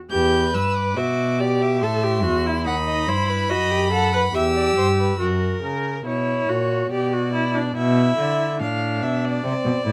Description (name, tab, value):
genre	classical, baroque-style fugue for string quartet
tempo	71 BPM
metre	3/4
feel	straight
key	E minor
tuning	A4 = 439 Hz
part	clear violin	melody	0.1-5.2 s	B5 to G6	-29 LUFS	equal	none
part	rich violin	second line	0.1-9.9 s	A#4 to F#5	-28 LUFS	equal	none
part	clear viola	accompaniment	0.1-9.9 s	C4 to B4	-26 LUFS	equal	none
part	rich cello	bass	0.1-9.9 s	D#2 to D3	-26 LUFS	equal	none
room	light reverb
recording	close, detailed microphones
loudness	-21 LUFS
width	mono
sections	0.1-5.2 A section; 5.2-9.9 B section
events	none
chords	0.1 Em; 1.8 F#m7b5/A; 2.7 B7/D#; 4.3 Em; 5.2 F#7; 6.9 Bm; 7.8 E5/B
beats	| 0.11 0.97 1.82 | 2.66 3.49 4.34 | 5.20 6.06 6.91 | 7.76 8.60 9.44